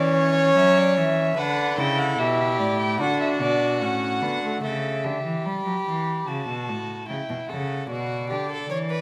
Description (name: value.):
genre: classical, baroque-style fugue for string quartet.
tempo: 74 BPM.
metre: 4/4.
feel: straight.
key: unclear.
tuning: A4 = 437 Hz.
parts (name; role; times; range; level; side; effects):
dark violin; melody; 0.0-9.0 s; C#5 to B5; -30 LUFS; equal; none.
warm violin; second line; 0.0-9.0 s; E4 to C#5; -28 LUFS; equal; none.
warm viola; accompaniment; 0.0-4.6 s; A3 to E4; -29 LUFS; equal; none.
rich cello; bass; 0.0-9.0 s; A2 to G3; -30 LUFS; equal; none.
room: moderate scoring stage reverb, RT60 1.7 s.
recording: none.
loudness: -24 LUFS.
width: mono.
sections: 0.0-4.6 A section; 4.6-9.0 B section.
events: none.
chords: 0.0 Dmaj9/E; 1.4 D; 4.6 C#dim; 6.3 F#m7; 7.9 Bm.